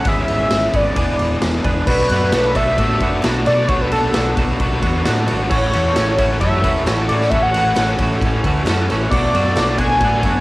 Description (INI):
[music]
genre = indie rock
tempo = 132 BPM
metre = 4/4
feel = straight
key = unclear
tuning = A4 = 440 Hz
[part]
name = pulse-width lead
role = melody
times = 0.0-10.4 s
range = A4 to G#5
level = -18 LUFS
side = equal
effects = chorus, cassette tape
[part]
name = crunchy overdriven guitar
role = riff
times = 0.0-10.4 s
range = E2 to A4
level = -23 LUFS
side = left 3 dB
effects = harmonic tremolo
[part]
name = twelve-string electric guitar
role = riff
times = 0.0-10.4 s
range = E3 to G#4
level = -23 LUFS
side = right 3 dB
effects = analog chorus, tape echo
[part]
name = raw garage drum kit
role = drums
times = 0.0-10.3 s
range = crash cymbal, kick drum, ride cymbal, snare drum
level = -20 LUFS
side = equal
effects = cassette tape
[part]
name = hollow-body short-scale fingered electric bass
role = bass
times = 0.1-10.4 s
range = E1 to B2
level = -21 LUFS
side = equal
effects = none
[part]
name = lush unison pad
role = sustained chords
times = 1.9-10.4 s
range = A4 to C#6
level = -33 LUFS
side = equal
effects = none
[part]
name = group handclap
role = percussion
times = 2.3-9.9 s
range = none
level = barely audible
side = none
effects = none
[sound]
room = light reverb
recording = home recording on cassette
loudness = -14 LUFS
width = side -19 dB against mid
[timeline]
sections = 0.0-1.9 A section; 1.9-10.4 B section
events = none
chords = 0.1 C#m7/G#; 1.0 E7; 1.9 Bm7; 5.5 A6; 9.1 Bm7